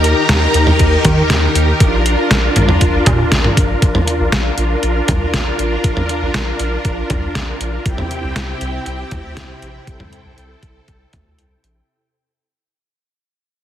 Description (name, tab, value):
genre	synth-pop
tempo	119 BPM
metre	4/4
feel	straight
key	Bb major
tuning	A4 = 438 Hz
part	string machine, violas	sustained chords	0.0-11.9 s	C3 to Bb5	-18 LUFS	equal	ensemble chorus
part	round analog bass	bass	0.0-11.8 s	A1 to Eb3	-18 LUFS	equal	none
part	detuned 8-bit digital drum machine	drums	0.0-11.8 s	cowbell, hi-hat, kick drum, snare drum, toms	-16 LUFS	equal	none
room	moderate recital hall reverb, RT60 1.4 s, digital ambience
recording	heavily compressed radio sound, multiband compression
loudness	-13 LUFS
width	side -11 dB against mid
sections	0.0-3.8 A section; 3.8-11.9 B section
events	fade-out 3.8-11.9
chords	0.0 Eb; 1.8 Bb; 7.9 C